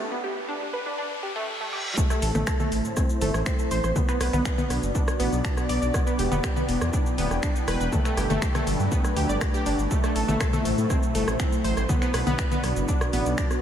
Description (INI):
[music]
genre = melodic techno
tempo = 121 BPM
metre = 4/4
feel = straight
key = unclear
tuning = A4 = 439 Hz
[part]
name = wide unison pluck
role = arpeggios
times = 0.0-13.4 s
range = A3 to D6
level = -29 LUFS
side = equal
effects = sidechain pumping, analog delay
[part]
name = riser and reverse cymbal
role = sound effects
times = 0.0-2.0 s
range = none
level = -34 LUFS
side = equal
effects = none
[part]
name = dark analog pad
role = sustained chords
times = 2.6-13.6 s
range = A3 to G5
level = -31 LUFS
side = equal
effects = chorus, sidechain pumping
[part]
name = swarming drone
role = drone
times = 3.2-13.6 s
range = B2 to F#3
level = -36 LUFS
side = right 1 dB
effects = built-in reverb, ensemble chorus, sidechain pumping
[part]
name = electronic kick drum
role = drums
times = 2.0-13.5 s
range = none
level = -26 LUFS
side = equal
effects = none
[part]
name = techno drum kit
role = drums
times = 2.0-13.6 s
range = congas, finger snaps, hi-hat, rim click, shaker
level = -31 LUFS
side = equal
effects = none
[part]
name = swelling detuned saw bass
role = bass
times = 2.2-13.3 s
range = D1 to A2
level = -27 LUFS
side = equal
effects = sidechain pumping, high-pass filter
[sound]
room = moderate church reverb, RT60 2.9 s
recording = dreamy mix soaked in reverb, high-pass filter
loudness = -22 LUFS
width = side -9 dB against mid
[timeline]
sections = 0.0-2.0 A section; 2.0-13.6 B section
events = break 0.0-2.0; build-up 0.0-2.0; riser 0.0-2.0; filter sweep on synth pluck 0.0-2.0; filter sweep 0.0-2.0; reverse cymbal 1.0-2.0; drop 2.0-13.6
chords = 0.0 Gadd9; 2.0 Am; 4.0 Bm; 5.9 Em7; 7.9 Gadd9; 9.9 Am; 11.9 Bm